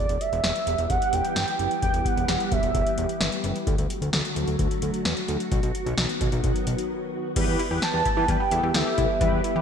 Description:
synth-pop; 130 BPM; 4/4; straight; E minor; A4 = 440 Hz
warm velvety synth lead; melody; 0.0-3.4, 7.8-9.6 s; D5 to A5; -26 LUFS; right 3 dB; chorus, ping-pong delay
soft string machine; sustained chords; 0.0-9.6 s; D3 to G4; -30 LUFS; equal; phaser, ensemble chorus
fat analog bass; bass; 0.0-9.6 s; E1 to E3; -28 LUFS; equal
electro analog drum machine; drums; 0.1-9.5 s; crash cymbal, hi-hat, kick drum, snare drum; -27 LUFS; equal; gated reverb
mellow synth brass; accompaniment; 7.4-9.6 s; B3 to B4; -28 LUFS; left 1 dB; chorus, phaser
analog pluck; arpeggios; 7.4-9.6 s; G3 to G5; -33 LUFS; left 4 dB; chorus, ping-pong delay
moderate lush hall reverb, RT60 1.9 s, digital ambience; bright 1980s-style digital production; -22 LUFS; side -7 dB against mid
0.0-7.4 A section; 7.4-9.6 B section
break 6.9-7.4
0.0 Em; 3.7 D; 5.5 B; 7.4 Em

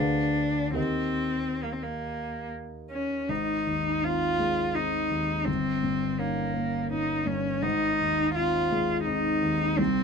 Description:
classical, romantic duo for cello and grand piano; 69-86 BPM; 3/4; rubato; Ab major; A4 = 442 Hz
rich cello; melody; 0.0-10.0 s; Bb3 to F4; -27 LUFS; equal
dark grand piano; accompaniment; 0.0-10.0 s; G1 to F5; -29 LUFS; left 1 dB
light reverb; minimal, uncompressed stereo recording; -25 LUFS; side -5 dB against mid
0.0-3.3 A section; 3.3-10.0 B section
0.0 Ddim7; 0.8 Eb; 3.3 Ab; 5.5 Eb7/G; 7.6 Ab

